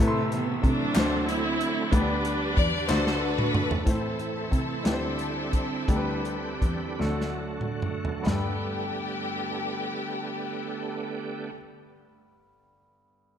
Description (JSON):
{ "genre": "slow gospel", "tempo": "44-62 BPM (dotted quarters)", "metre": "6/8", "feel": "straight", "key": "G major", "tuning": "A4 = 439 Hz", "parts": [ { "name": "warm studio string section", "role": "melody", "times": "0.0-11.5 s", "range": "C3 to D5", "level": "-30 LUFS", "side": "equal", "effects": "none" }, { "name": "warm baby grand piano", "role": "accompaniment", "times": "0.0-13.4 s", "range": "G2 to C6", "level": "-33 LUFS", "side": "left 3 dB", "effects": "none" }, { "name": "bright tonewheel organ", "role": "sustained chords", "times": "0.0-11.5 s", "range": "C3 to B4", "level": "-34 LUFS", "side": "right 4 dB", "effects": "slow rotary speaker, chorus vibrato" }, { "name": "dark cello", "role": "bass", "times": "0.0-11.5 s", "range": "D2 to C3", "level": "-31 LUFS", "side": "equal", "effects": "none" }, { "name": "warm soul drum kit", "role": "drums", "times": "0.3-8.5 s", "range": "hi-hat, kick drum, snare drum, toms", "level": "-27 LUFS", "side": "equal", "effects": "none" }, { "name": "group handclap", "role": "percussion", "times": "0.9-3.2 s", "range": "none", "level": "-38 LUFS", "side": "left 2 dB", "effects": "none" } ], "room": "light reverb", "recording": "none", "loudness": "-25 LUFS", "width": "side -9 dB against mid", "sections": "0.0-3.9 A section; 3.9-8.3 B section; 8.3-13.4 C section", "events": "drum fill 2.9-3.9, 7.0-8.3; slowing down 3.9-8.3", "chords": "0.0 Am; 1.0 D7; 1.9 G/D; 2.9 D; 3.9 Am; 4.8 D9sus4; 5.9 G/D; 7.0 D; 8.3 Gadd9" }